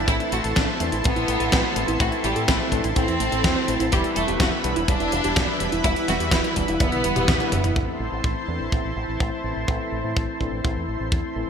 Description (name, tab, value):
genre	italo disco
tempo	125 BPM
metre	4/4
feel	straight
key	A minor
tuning	A4 = 440 Hz
part	lush unison pad	sustained chords	0.0-11.5 s	E4 to C6	-28 LUFS	equal	chorus, shimmer reverb
part	fingered electric bass with an envelope filter	bass	0.0-11.4 s	E1 to A2	-29 LUFS	equal	none
part	clear chamber violin section	melody	0.1-7.7 s	G3 to A4	-26 LUFS	equal	ping-pong delay, shimmer reverb
part	warbly dusty pluck	arpeggios	0.1-7.8 s	G3 to C5	-30 LUFS	right 2 dB	chorus, ping-pong delay, shimmer reverb
part	bright tine electric piano	stabs	0.1-11.5 s	E3 to E4	-30 LUFS	left 1 dB	medium stereo tremolo, low-pass filter, shimmer reverb
part	gated 80s digital drum machine	drums	0.1-7.7 s	hi-hat, snare drum, toms	-26 LUFS	equal	gated reverb, gated reverb snare, overdrive, low-pass filter on hats, low-pass filter on cymbals, low-pass filter on snare, low-pass filter on toms, low-pass filter on room
part	kick drum	drums	0.1-11.2 s	none	-24 LUFS	equal	none
room	moderate lush hall reverb, RT60 1.7 s, studio reverb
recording	bright 1980s-style digital production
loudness	-20 LUFS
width	side -7 dB against mid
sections	0.0-7.8 A section; 7.8-11.5 B section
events	drum fill 6.8-7.8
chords	0.1 Am; 3.9 Em; 7.8 Am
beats	| 0.08 0.56 1.04 1.52 | 2.00 2.48 2.96 3.44 | 3.92 4.40 4.88 5.36 | 5.84 6.32 6.80 7.28 | 7.76 8.24 8.72 9.20 | 9.68 10.16 10.64 11.12